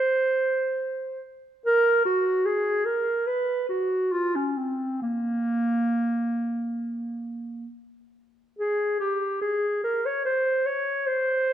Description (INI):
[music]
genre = classical, baroque-style fantasia for unaccompanied clarinet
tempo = 65-76 BPM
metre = 4/4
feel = rubato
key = Bb minor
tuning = A4 = 441 Hz
[part]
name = mellow clarinet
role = solo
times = 0.0-11.5 s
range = Bb3 to Db5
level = -23 LUFS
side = right 1 dB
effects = none
[sound]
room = moderate scoring stage reverb, RT60 1.7 s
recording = none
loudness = -23 LUFS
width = side -10 dB against mid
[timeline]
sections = 0.0-8.6 A section; 8.6-11.5 A section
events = none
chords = none